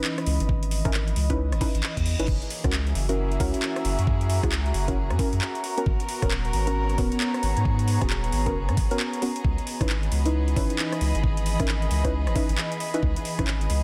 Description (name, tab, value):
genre	UK garage, two-step garage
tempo	134 BPM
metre	4/4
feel	swing 62% on 16ths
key	C# dorian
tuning	A4 = 440 Hz
part	deep mellow chord stab	stabs	0.0-13.5 s	B3 to B4	-33 LUFS	equal	chorus, digital delay
part	garage drum kit	drums	0.0-13.8 s	crash cymbal, handclaps, hi-hat, rim click	-34 LUFS	equal	overdrive, small room reverb
part	airy breathy pad	texture	0.0-13.8 s	E3 to B5	-35 LUFS	equal	chorus, sidechain pumping
part	saturated sub bass	bass	0.3-13.8 s	D#1 to G#2	-28 LUFS	equal	none
part	electronic kick drum	drums	0.5-13.5 s	none	-29 LUFS	equal	small room reverb
part	reverse cymbal	sound effects	1.6-2.3 s	none	-41 LUFS	equal	none
part	rich studio violin section	sustained chords	2.3-13.8 s	A#3 to D#5	-41 LUFS	equal	sidechain pumping
room	light reverb, digital ambience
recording	dense, heavily limited modern master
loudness	-25 LUFS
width	mono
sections	0.0-13.8 A section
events	reverse cymbal 1.6-2.3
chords	0.0 C#m9; 2.3 F#7; 5.6 G#m11; 9.4 C#m9